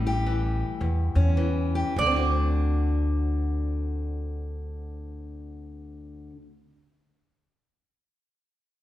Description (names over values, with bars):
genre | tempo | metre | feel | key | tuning
acoustic country blues, solo or duo | 102 BPM | 4/4 | swing 62% on 8ths | D mixolydian | A4 = 440 Hz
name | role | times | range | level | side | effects
fingerpicked steel-string acoustic guitar | accompaniment | 0.0-6.5 s | D2 to G4 | -30 LUFS | left 3 dB | none
upright bass | bass | 0.0-6.3 s | A1 to E2 | -26 LUFS | equal | none
mandolin | melody | 2.0-6.3 s | D5 | -27 LUFS | right 5 dB | none
room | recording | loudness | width
wet large studio reverb, RT60 1.4 s | band playing live in one room | -23 LUFS | side -14 dB against mid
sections
0.0-2.0 A section; 2.0-6.7 B section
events
slowing down 0.0-2.0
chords
0.0 A7; 2.0 D7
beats
0.26 0.81 1.37 | 1.96 2.55 3.14 3.73 | 4.32 4.91 5.50 6.09